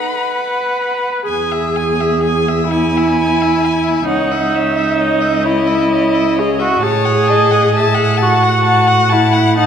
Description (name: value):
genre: classical, slow romantic movement for string quartet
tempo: 44 BPM (dotted quarters)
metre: 6/8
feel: rubato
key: E major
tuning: A4 = 439 Hz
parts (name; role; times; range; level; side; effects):
- muted violin; melody; 0.0-9.7 s; C#5 to B5; -21 LUFS; left 9 dB; none
- muted violin; second line; 0.0-9.7 s; C#5 to G#5; -19 LUFS; left 4 dB; none
- muted viola; accompaniment; 0.0-9.7 s; D#4 to B4; -14 LUFS; right 1 dB; none
- muted cello; bass; 1.3-9.7 s; C#2 to A2; -18 LUFS; right 3 dB; none
room: moderate concert hall reverb, RT60 1.8 s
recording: minimal, uncompressed stereo recording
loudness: -12 LUFS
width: side -8 dB against mid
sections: 0.0-1.3 A section; 1.3-9.7 B section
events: none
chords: 0.0 B5; 1.3 E; 4.1 C#m; 6.8 F#m/A